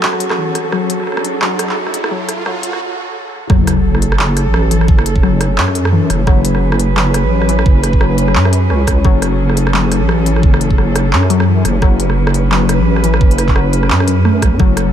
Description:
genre	half-time drum and bass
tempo	173 BPM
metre	4/4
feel	swing 57% on 16ths, half-time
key	F# minor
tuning	A4 = 439 Hz
part	muted studio cello section	sustained chords	0.0-14.9 s	F#3 to B4	-21 LUFS	right 2 dB	sidechain pumping
part	warbly dusty pluck	arpeggios	0.0-14.9 s	F#2 to C#4	-19 LUFS	left 8 dB	chorus, ping-pong delay
part	organic electronic drum kit	drums	0.0-14.8 s	handclaps, hi-hat, rim click	-20 LUFS	right 1 dB	none
part	riser and sub drop	sound effects	0.0-4.9 s	none	-23 LUFS	right 2 dB	none
part	metallic inharmonic drone	texture	0.0-14.9 s	A3 to F#4	-24 LUFS	left 3 dB	chorus, built-in reverb
part	deep soft wobble bass	bass	3.5-14.9 s	F#1 to F#2	-14 LUFS	right 1 dB	chorus
part	electronic kick drum	drums	3.5-14.7 s	none	-11 LUFS	right 1 dB	none
room	little or no reverb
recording	high-pass filter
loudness	-11 LUFS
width	side -10 dB against mid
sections	0.0-3.5 A section; 3.5-14.9 B section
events	build-up 0.0-3.5; riser 0.0-2.8; filter sweep on synth pluck 0.0-3.5; break 2.8-3.5; drop 3.5-14.9; impact 3.5-4.9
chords	0.0 F#m

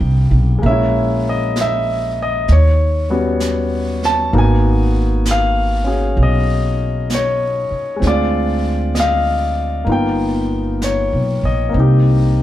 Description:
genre	jazz ballad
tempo	65 BPM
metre	4/4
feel	swing 66% on 8ths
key	unclear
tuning	A4 = 440 Hz
part	warm concert grand piano	accompaniment	0.0-12.4 s	G3 to A5	-17 LUFS	left 2 dB	none
part	upright bass	bass	0.0-12.4 s	G1 to Eb2	-16 LUFS	right 1 dB	none
part	jazz brush drum kit	drums	0.6-12.4 s	brushed snare drum, hi-hat, snare drum	-28 LUFS	right 2 dB	none
room	moderate studio reverb, RT60 0.8 s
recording	band playing live in one room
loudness	-14 LUFS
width	side -13 dB against mid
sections	0.0-12.4 A section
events	none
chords	0.0 Eb69; 0.6 Bbm7b5; 2.5 Eb7alt; 4.3 Abm9; 8.0 Dm7b5; 9.9 G7alt; 11.7 Cm7

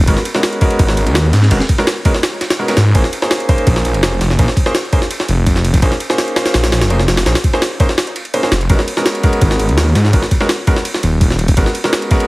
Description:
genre	drum and bass, jungle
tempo	167 BPM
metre	4/4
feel	straight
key	G# dorian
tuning	A4 = 441 Hz
part	detuned saw bass	bass	0.0-11.7 s	D#1 to G#2	-13 LUFS	equal	none
part	bright concert grand piano	stabs	0.1-12.3 s	G#3 to B#4	-18 LUFS	equal	dub echo
part	jungle sampler-style drum kit	drums	0.1-12.3 s	kick drum, ride cymbal, snare drum	-14 LUFS	equal	overdrive
room	light reverb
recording	heavily compressed radio sound, vinyl crackle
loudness	-11 LUFS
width	side -22 dB against mid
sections	0.0-12.3 A section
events	kick drops out 8.0-8.7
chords	0.0 G#m11; 3.0 A#m11; 8.7 G#m11

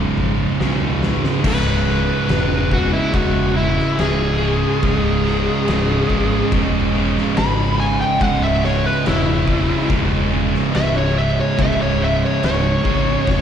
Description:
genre	stoner and doom metal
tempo	71 BPM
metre	4/4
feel	straight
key	C# minor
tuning	A4 = 436 Hz
part	bowed-like drone	sustained chords	0.0-13.4 s	C#3 to D#5	-29 LUFS	equal	none
part	distorted electric guitar	riff	0.0-13.4 s	C#2 to C#3	-24 LUFS	equal	overdrive, slapback echo
part	thick fuzz guitar	riff	0.0-13.4 s	C#2 to C#3	-26 LUFS	left 8 dB	distortion
part	thick fuzz guitar	riff	0.0-13.4 s	C#2 to C#3	-21 LUFS	right 7 dB	distortion
part	modern bright fingered electric bass	bass	0.2-13.4 s	C#1 to B1	-23 LUFS	left 1 dB	overdrive
part	oversized low-tuned drum kit	drums	0.2-13.4 s	crash cymbal, kick drum, snare drum, toms	-24 LUFS	left 1 dB	none
part	fuzz lead guitar	melody	1.5-13.4 s	E4 to B5	-22 LUFS	left 2 dB	distortion, tape echo
room	little or no reverb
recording	live gig heard through the venue's PA, recital hall reverb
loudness	-15 LUFS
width	side -8 dB against mid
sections	0.0-1.4 A section; 1.4-13.4 B section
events	drum fill 0.0-1.4; lead electric guitar solo 1.4-13.4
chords	0.0 C#5; 1.4 C#m

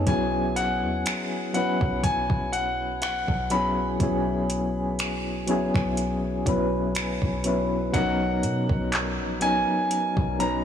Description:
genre	contemporary R&B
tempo	61 BPM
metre	4/4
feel	swing 54% on 16ths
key	B major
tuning	A4 = 440 Hz
part	soft electric-piano-like synth keys	accompaniment	0.0-10.6 s	F#3 to B4	-26 LUFS	left 1 dB	chorus, tremolo
part	soft 808-style bass	bass	0.0-10.6 s	A#1 to B2	-32 LUFS	equal	none
part	clear grand piano	melody	0.1-10.6 s	F#5 to B5	-28 LUFS	left 1 dB	tape echo
part	smooth R&B drum kit	drums	0.1-10.6 s	finger snaps, handclaps, hi-hat, kick drum	-28 LUFS	right 1 dB	soft clipping on snare
room	light reverb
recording	blown-out, overdriven recording, overdrive, small room ambience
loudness	-23 LUFS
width	side -8 dB against mid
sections	0.0-7.9 A section; 7.9-10.6 B section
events	none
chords	0.1 F#9sus4/B; 7.9 Bmaj9

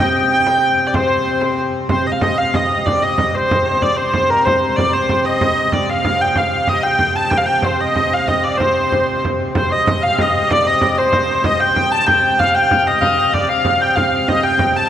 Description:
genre	medieval dance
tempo	126 BPM (dotted quarters)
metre	6/8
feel	straight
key	C dorian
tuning	A4 = 441 Hz
part	warm hurdy-gurdy	melody	0.0-14.9 s	Bb4 to A5	-15 LUFS	equal	none
part	warm cor anglais	second line	0.0-1.5, 9.5-14.9 s	C5 to A5	-21 LUFS	left 4 dB	none
part	hand-pumped harmonium	drone	0.0-14.9 s	C3	-23 LUFS	equal	none
part	frame drum	percussion	0.5-14.7 s	none	-21 LUFS	right 2 dB	none
room	wet church reverb, RT60 3.5 s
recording	none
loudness	-13 LUFS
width	side -10 dB against mid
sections	0.0-1.9 A section; 1.9-9.5 B section; 9.5-14.9 B section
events	none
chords	none

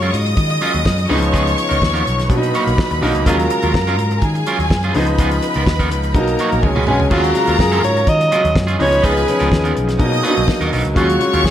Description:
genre	disco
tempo	125 BPM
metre	4/4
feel	straight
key	Eb minor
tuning	A4 = 441 Hz
part	clear studio violin section	second line	0.0-11.5 s	Ab4 to Eb6	-21 LUFS	left 1 dB	none
part	clear grand piano	accompaniment	0.0-11.5 s	A#2 to F4	-20 LUFS	equal	none
part	electric guitar at the edge of break-up	accompaniment	0.0-11.5 s	F3 to Db5	-23 LUFS	right 4 dB	spring reverb
part	picked electric bass with an envelope filter	bass	0.0-11.5 s	A#1 to Eb3	-20 LUFS	equal	none
part	damped 70s drum kit	drums	0.0-11.5 s	crash cymbal, hi-hat, kick drum, snare drum, toms	-20 LUFS	equal	none
part	breathy alto saxophone	melody	7.1-11.5 s	Gb4 to Eb5	-18 LUFS	equal	tape echo
room	moderate large studio reverb, RT60 0.9 s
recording	none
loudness	-13 LUFS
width	side -11 dB against mid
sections	0.0-7.1 A section; 7.1-11.5 B section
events	drum fill 6.6-7.1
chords	0.0 Ebm11; 1.1 Db9; 2.3 Bmaj7; 3.3 Ebm11; 4.9 Db9; 6.2 Bmaj7; 6.6 Db7sus4; 7.1 Ebm11; 8.8 Db9; 10.0 Bmaj7; 11.0 Ebm11

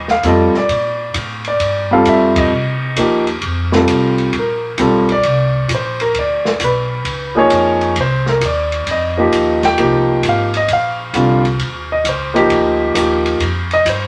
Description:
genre	jazz piano trio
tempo	132 BPM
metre	4/4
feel	swing 67% on 8ths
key	Bb major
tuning	A4 = 440 Hz
part	warm grand piano	melody	0.0-14.1 s	D3 to G5	-16 LUFS	equal	none
part	upright bass	bass	0.0-14.1 s	Ab1 to C3	-24 LUFS	equal	none
part	open jazz drum kit	drums	0.1-14.0 s	hi-hat, kick drum, ride cymbal, snare drum	-24 LUFS	equal	none
room	moderate studio reverb, RT60 0.5 s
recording	none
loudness	-15 LUFS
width	mono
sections	0.0-4.3 A section; 4.3-14.1 B section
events	band accent 2.3; grand piano solo 4.3-14.1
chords	0.0 F9; 0.7 Bbmaj9; 2.5 Cm7; 3.4 Fadd9; 4.3 Bbadd9; 6.1 Bm; 7.1 Dbadd9; 8.0 Cm9; 9.8 Fm9; 10.7 Bbadd9; 11.6 Ebmaj9; 13.4 Fsus2

